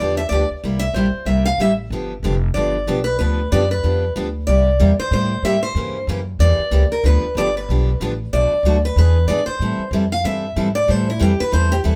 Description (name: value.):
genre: acoustic string swing (jazz manouche).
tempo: 187 BPM.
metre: 4/4.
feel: swing 59% on 8ths.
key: G mixolydian.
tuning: A4 = 440 Hz.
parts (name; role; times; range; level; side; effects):
picked steel-string acoustic guitar; second line; 0.0-11.8 s; E4 to F5; -23 LUFS; equal; none.
picked steel-string acoustic guitar; accompaniment; 0.0-12.0 s; B2 to A4; -24 LUFS; equal; none.
upright bass; bass; 0.0-12.0 s; F1 to A2; -21 LUFS; equal; none.
room: light reverb.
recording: band playing live in one room.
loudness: -18 LUFS.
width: mono.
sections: 0.0-12.0 A section.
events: steel-string acoustic guitar solo 0.0-12.0.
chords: 0.0 G7; 0.6 C7; 1.9 G7; 4.5 C7; 5.8 C#dim7; 7.0 G7; 8.3 Bm7; 9.0 E7; 9.6 Am7.